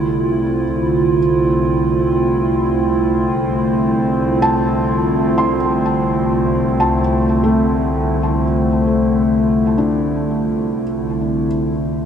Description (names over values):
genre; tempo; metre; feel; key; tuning
ambient; free time; none; none; unclear; A4 = 440 Hz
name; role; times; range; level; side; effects
warbly tape-like pad; sustained chords; 0.0-12.1 s; D3 to F4; -16 LUFS; right 1 dB; chorus, built-in reverb
felt-muted upright piano; arpeggios; 0.0-12.1 s; A3 to C6; -23 LUFS; equal; ping-pong delay
clear studio double bass section; bass; 0.0-12.1 s; C2; -24 LUFS; left 1 dB; none
analog drone; drone; 0.0-12.1 s; C3 to C4; -23 LUFS; left 1 dB; chorus
room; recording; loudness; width
wet huge ambient reverb, RT60 8.5 s; cassette tape; -14 LUFS; side -8 dB against mid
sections
0.0-12.1 A section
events
none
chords
0.0 Dmadd9/C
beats
free time